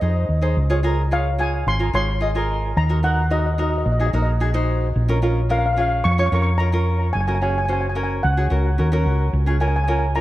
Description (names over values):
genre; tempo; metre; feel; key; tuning
calypso; 110 BPM; 4/4; straight; Db major; A4 = 441 Hz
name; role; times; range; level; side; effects
tenor ukulele; accompaniment; 0.0-10.2 s; Db4 to Eb5; -24 LUFS; equal; none
hollow-body short-scale fingered electric bass; bass; 0.0-10.2 s; Gb1 to F2; -20 LUFS; equal; none
steel pan; melody; 1.1-10.2 s; Eb5 to Db6; -25 LUFS; equal; diffuse ambient delay
room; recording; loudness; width
moderate plate reverb, RT60 2.9 s; dreamy mix soaked in reverb; -18 LUFS; side -15 dB against mid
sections
0.6-10.2 A section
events
none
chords
0.0 Ab; 0.6 Dbmaj7; 2.8 Ebm; 5.0 Bbm; 7.1 Gb; 9.3 Db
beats
0.02 | 0.57 1.12 1.67 2.21 | 2.76 3.31 3.86 4.41 | 4.96 5.50 6.05 6.60 | 7.15 7.70 8.24 8.79 | 9.34 9.88